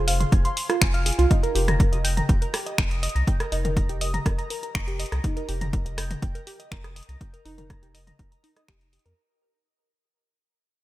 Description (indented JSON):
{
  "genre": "melodic techno",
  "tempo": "122 BPM",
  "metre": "4/4",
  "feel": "straight",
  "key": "unclear",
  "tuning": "A4 = 440 Hz",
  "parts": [
    { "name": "round analog bass", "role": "bass", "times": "0.0-9.1 s", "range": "F1 to F2", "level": "-26 LUFS", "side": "equal", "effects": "sidechain pumping" },
    { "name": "woody wave-folded pluck", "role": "arpeggios", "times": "0.1-9.1 s", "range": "Eb4 to Bb6", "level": "-29 LUFS", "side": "right 2 dB", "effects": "analog chorus, cassette tape, sidechain pumping, diffuse ambient delay" },
    { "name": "punchy analog drum machine", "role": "drums", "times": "0.1-9.2 s", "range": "finger snaps, hi-hat, rim click, toms", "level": "-29 LUFS", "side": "equal", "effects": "none" },
    { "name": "electronic kick drum", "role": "drums", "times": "0.3-8.8 s", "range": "none", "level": "-22 LUFS", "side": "equal", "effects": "none" }
  ],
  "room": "light reverb, digital ambience",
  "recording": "none",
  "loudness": "-22 LUFS",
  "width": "side -16 dB against mid",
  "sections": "0.0-9.2 A section",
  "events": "drop 0.0-9.2; fade-out 1.3-9.2",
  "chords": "0.0 Fm; 1.3 Eb/F"
}